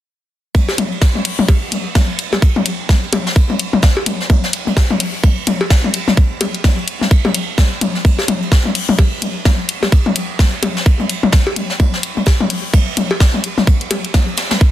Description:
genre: techno.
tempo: 128 BPM.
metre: 4/4.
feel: swing 59% on 16ths.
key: none.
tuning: none.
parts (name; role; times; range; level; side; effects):
electronic kick drum; drums; 0.5-14.7 s; none; -11 LUFS; equal; studio reverb.
electronic toms and cowbell; percussion; 0.5-14.6 s; none; -18 LUFS; left 3 dB; studio reverb, tape echo.
jazz brush drum kit; drums; 0.6-14.7 s; hi-hat, ride cymbal, snare drum; -22 LUFS; right 2 dB; sidechain pumping on cymbals, high-pass filter on cymbals, studio reverb, sidechain pumping on hats, high-pass filter on hats, soft clipping on snare, high-pass filter on snare, high-pass filter on room.
electronic hi-hat; drums; 0.8-14.5 s; none; -22 LUFS; left 3 dB; studio reverb.
room: studio reverb.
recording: dense, heavily limited modern master.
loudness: -13 LUFS.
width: side -13 dB against mid.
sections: 0.5-14.7 A section.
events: none.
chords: none.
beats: | 0.55 1.02 1.49 1.95 | 2.42 2.89 3.36 3.83 | 4.30 4.77 5.24 5.70 | 6.17 6.64 7.11 7.58 | 8.05 8.52 8.99 9.45 | 9.92 10.39 10.86 11.33 | 11.80 12.27 12.74 13.20 | 13.67 14.14 14.61.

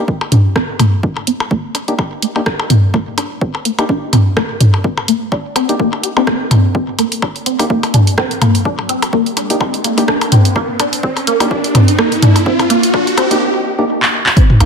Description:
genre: minimal techno.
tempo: 126 BPM.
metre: 4/4.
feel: swing 56% on 16ths.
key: C minor.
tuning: A4 = 440 Hz.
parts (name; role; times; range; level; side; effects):
percussive organ stab; stabs; 0.0-13.8 s; Bb3 to G4; -20 LUFS; equal; chorus, ping-pong delay.
resonant blip pluck; riff; 0.1-14.7 s; Bb3 to G4; -17 LUFS; equal; phaser, wide subtle chorus, sidechain pumping, ping-pong delay.
electronic kick drum; drums; 0.1-14.5 s; none; -16 LUFS; equal; high-pass filter on kick.
electronic percussion blips and toms; percussion; 0.2-14.7 s; none; -14 LUFS; equal; none.
round analog bass; bass; 0.3-14.7 s; G1 to C2; -11 LUFS; equal; sidechain pumping, high-pass filter.
techno drum kit; drums; 0.3-14.7 s; handclaps, hi-hat, rim click; -18 LUFS; right 1 dB; none.
riser; sound effects; 8.6-13.4 s; none; -20 LUFS; equal; none.
pulsing gated texture; texture; 14.4-14.7 s; Eb4; -26 LUFS; right 6 dB; none.
room: moderate lush hall reverb, RT60 1.7 s.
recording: none.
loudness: -11 LUFS.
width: side -6 dB against mid.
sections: 0.0-14.4 A section.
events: build-up 0.0-14.4; filter sweep on synth pluck 0.0-14.4; riser 8.6-13.4; drum fill 14.0-14.4.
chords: 0.0 C7(no3).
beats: 0.08 0.56 | 1.03 1.51 1.99 2.46 | 2.94 3.42 3.89 4.37 | 4.84 5.32 5.80 6.27 | 6.75 7.22 7.70 8.18 | 8.65 9.13 9.61 10.08 | 10.56 11.03 11.51 11.99 | 12.46 12.94 13.41 13.89 | 14.37.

